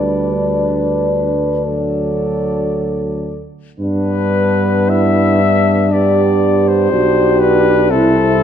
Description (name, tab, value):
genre	classical, hymn-like piece for brass band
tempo	53-61 BPM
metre	4/4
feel	rubato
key	G major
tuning	A4 = 440 Hz
part	dark cornet	melody	0.0-8.4 s	A4 to E5	-19 LUFS	left 7 dB	none
part	dark French horn section	second line	0.0-8.4 s	D4 to B4	-19 LUFS	right 6 dB	none
part	clear euphonium	accompaniment	0.0-8.4 s	D4 to G4	-19 LUFS	left 3 dB	none
part	mellow trombone	accompaniment	0.0-8.4 s	F#3 to D4	-22 LUFS	right 4 dB	none
part	mellow tuba	bass	0.0-8.4 s	B1 to G2	-18 LUFS	equal	none
room	moderate scoring stage reverb, RT60 1.7 s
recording	dark, warm production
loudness	-12 LUFS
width	side -8 dB against mid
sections	0.0-3.8 A section; 3.8-8.4 B section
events	none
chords	0.0 G/D; 1.6 D; 3.8 G; 7.9 C6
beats	0.57 1.65 2.73 | 3.80 4.89 5.92 6.91 | 7.90